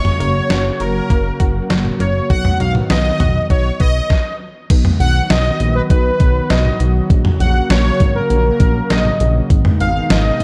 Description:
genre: synth-pop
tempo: 100 BPM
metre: 4/4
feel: straight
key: unclear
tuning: A4 = 444 Hz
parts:
  - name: analog synth brass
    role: melody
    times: 0.0-10.4 s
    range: Bb4 to Gb5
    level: -22 LUFS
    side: equal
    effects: chorus
  - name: warm analog pad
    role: sustained chords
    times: 0.0-10.4 s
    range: Cb3 to Gb4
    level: -25 LUFS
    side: equal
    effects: chorus
  - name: analog pluck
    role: arpeggios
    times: 0.0-4.1 s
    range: Gb3 to Gb4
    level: -30 LUFS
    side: equal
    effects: chorus, tape echo
  - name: chorused synth bass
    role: bass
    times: 0.0-10.4 s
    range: Gb1 to Cb2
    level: -19 LUFS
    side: equal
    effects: none
  - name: gated 80s digital drum machine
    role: drums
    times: 0.0-10.4 s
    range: crash cymbal, hi-hat, kick drum, snare drum, toms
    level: -18 LUFS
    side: equal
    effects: gated reverb, gated reverb snare
room: light reverb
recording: dark, warm production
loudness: -15 LUFS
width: mono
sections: 0.0-4.7 A section; 4.7-10.4 B section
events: stop 4.1-4.7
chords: 0.0 Gb; 2.3 Cb; 7.1 Gb; 9.5 Abm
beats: 0.50 1.10 1.70 | 2.30 2.90 3.50 4.10 | 4.70 5.30 5.90 6.50 | 7.10 7.70 8.30 8.90 | 9.50 10.10

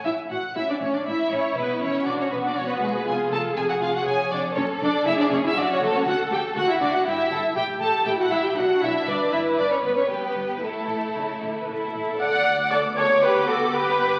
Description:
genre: quick classical-period movement for string orchestra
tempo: 119 BPM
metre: 3/4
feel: straight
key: A major, D major from 6.1 s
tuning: A4 = 440 Hz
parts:
  - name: clear symphonic violin section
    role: melody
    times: 0.0-14.2 s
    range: G#4 to D6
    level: -28 LUFS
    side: equal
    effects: none
  - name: clear symphonic cello section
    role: bass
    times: 0.0-14.2 s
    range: D2 to B3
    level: -42 LUFS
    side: equal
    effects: none
  - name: warm chamber double bass section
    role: bass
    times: 0.0-14.2 s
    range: E1 to D2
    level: -41 LUFS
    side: equal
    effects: none
  - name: rich studio viola section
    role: accompaniment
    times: 0.1-14.2 s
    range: G#3 to F#5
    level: -26 LUFS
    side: equal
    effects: none
  - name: dark studio violin section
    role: second line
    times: 0.6-14.2 s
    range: C#4 to D5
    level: -29 LUFS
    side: equal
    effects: none
room: wet recital hall reverb, RT60 1.3 s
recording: very old 78 rpm record, vinyl crackle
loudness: -23 LUFS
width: mono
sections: 0.0-12.2 A section; 12.2-14.2 B section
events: none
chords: 0.0 A; 1.6 E7sus2; 3.1 C#/E#; 4.6 F#m; 6.1 D; 7.1 Em/G; 7.6 A5; 8.6 Bm; 9.1 G6; 10.6 Asus4; 11.7 A; 12.2 D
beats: | 0.05 0.56 1.06 | 1.56 2.07 2.57 | 3.07 3.56 4.06 | 4.57 5.07 5.57 | 6.06 6.56 7.06 | 7.56 8.06 8.57 | 9.07 9.58 10.10 | 10.62 11.15 11.68 | 12.20 12.71 13.22 | 13.72

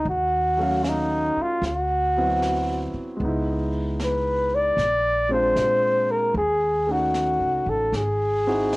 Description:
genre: jazz ballad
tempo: 76 BPM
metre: 4/4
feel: swing 67% on 8ths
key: unclear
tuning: A4 = 440 Hz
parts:
  - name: breathy flugelhorn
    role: melody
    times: 0.0-8.8 s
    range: C#4 to D5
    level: -21 LUFS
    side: equal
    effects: none
  - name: warm concert grand piano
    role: accompaniment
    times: 0.0-8.8 s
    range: F#3 to E#5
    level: -28 LUFS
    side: equal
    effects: cassette tape
  - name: upright bass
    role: bass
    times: 0.1-8.8 s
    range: G#1 to A#2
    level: -29 LUFS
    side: equal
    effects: none
  - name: jazz brush drum kit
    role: drums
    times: 0.1-8.8 s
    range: brushed snare drum, hi-hat, snare drum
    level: -38 LUFS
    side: equal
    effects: cassette tape
room: moderate studio reverb, RT60 0.6 s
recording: home recording on cassette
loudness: -20 LUFS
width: side -22 dB against mid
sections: 0.0-8.8 A section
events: none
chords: 0.1 D#m7b5; 1.6 D13; 3.2 C#m9; 4.8 A#7; 6.4 D#m7b5; 7.9 G#7b13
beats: | 0.07 0.85 1.64 2.42 | 3.21 4.00 4.78 5.57 | 6.36 7.15 7.94 8.73

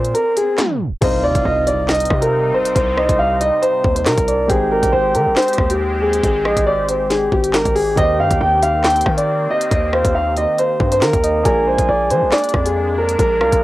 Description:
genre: hip hop, drill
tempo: 138 BPM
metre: 4/4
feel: half-time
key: C minor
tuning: A4 = 435 Hz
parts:
  - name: dark concert grand piano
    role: melody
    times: 0.0-13.6 s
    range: G4 to G5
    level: -16 LUFS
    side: equal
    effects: low-pass filter, cassette tape
  - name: dark concert grand piano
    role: accompaniment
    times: 0.0-13.6 s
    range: C3 to Eb5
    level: -28 LUFS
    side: equal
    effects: none
  - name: hard-hitting 808-style bass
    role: bass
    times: 0.0-13.6 s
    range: Ab1 to F3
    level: -22 LUFS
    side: equal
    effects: none
  - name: drill drum kit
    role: drums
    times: 0.0-13.6 s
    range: crash cymbal, handclaps, hi-hat, kick drum, rim click, snare drum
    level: -20 LUFS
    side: equal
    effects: none
  - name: swell and impact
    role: sound effects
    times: 0.0-2.8 s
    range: none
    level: -29 LUFS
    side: left 1 dB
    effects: none
  - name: soft octave-layered synth lead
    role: second line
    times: 1.0-13.6 s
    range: D5 to Ab5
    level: -23 LUFS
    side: right 2 dB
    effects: chorus, cassette tape, analog delay
  - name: sweeping resonant pad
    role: sustained chords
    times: 1.0-13.6 s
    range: C3 to G4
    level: -26 LUFS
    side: equal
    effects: chorus, cassette tape
room: light reverb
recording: home recording on cassette, tape stop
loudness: -14 LUFS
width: side -16 dB against mid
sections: 0.0-1.0 A section; 1.0-13.6 B section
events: swell 0.0-1.0; kick muted 0.1-1.0; tape stop 0.6-1.0; impact 1.0-2.8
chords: 0.0 Bb7; 1.0 Cm; 4.5 Abmaj7; 8.0 Eb6; 11.5 Bb7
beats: 0.15 0.58 | 1.02 1.45 1.89 2.32 | 2.76 3.19 3.63 4.06 | 4.50 4.93 5.37 5.80 | 6.24 6.67 7.10 7.54 | 7.97 8.41 8.84 9.28 | 9.71 10.15 10.58 11.02 | 11.45 11.89 12.32 12.76 | 13.19 13.63

